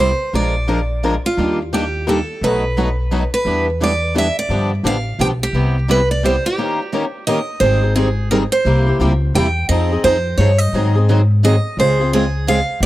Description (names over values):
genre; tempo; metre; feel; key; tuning
acoustic string swing (jazz manouche); 173 BPM; 3/4; swing 61% on 8ths; Ab major from 7.6 s; A4 = 440 Hz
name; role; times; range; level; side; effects
picked steel-string acoustic guitar; melody; 0.0-12.9 s; F4 to G5; -19 LUFS; right 2 dB; tape echo
picked steel-string acoustic guitar; accompaniment; 0.0-12.9 s; B2 to B4; -23 LUFS; right 4 dB; none
picked swing-style acoustic guitar; accompaniment; 0.0-12.9 s; B2 to Bb4; -21 LUFS; left 4 dB; none
upright bass; bass; 0.0-12.9 s; G1 to Ab2; -18 LUFS; equal; none
room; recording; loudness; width
small room ambience; dry, close 1970s-style studio recording; -14 LUFS; side -15 dB against mid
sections
0.0-7.6 A section; 7.6-12.9 B section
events
break 6.6-7.6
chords
0.3 Bb7; 1.4 Ebmaj7; 2.4 B7; 3.5 Em7; 4.5 G7; 5.5 Cmaj7; 6.6 Eb7; 7.6 Abmaj7; 8.7 C7; 9.7 Fm7; 10.7 Ab7; 11.8 Dbmaj7